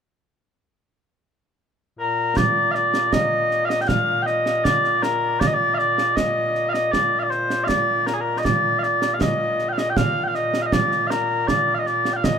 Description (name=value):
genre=scottish traditional, Scottish pipe music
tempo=79 BPM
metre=2/4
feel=straight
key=Bb major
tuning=A4 = 438 Hz
part: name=mellow small bagpipes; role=melody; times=2.0-12.4 s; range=Bb2 to G5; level=-19 LUFS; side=equal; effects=none
part: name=concert snare drum and concert bass drum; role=drums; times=2.4-12.4 s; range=none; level=-25 LUFS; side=right 3 dB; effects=none
room=light reverb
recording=minimal, uncompressed stereo recording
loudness=-18 LUFS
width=side -7 dB against mid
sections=0.8-2.4 A section; 2.4-12.4 B section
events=none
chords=none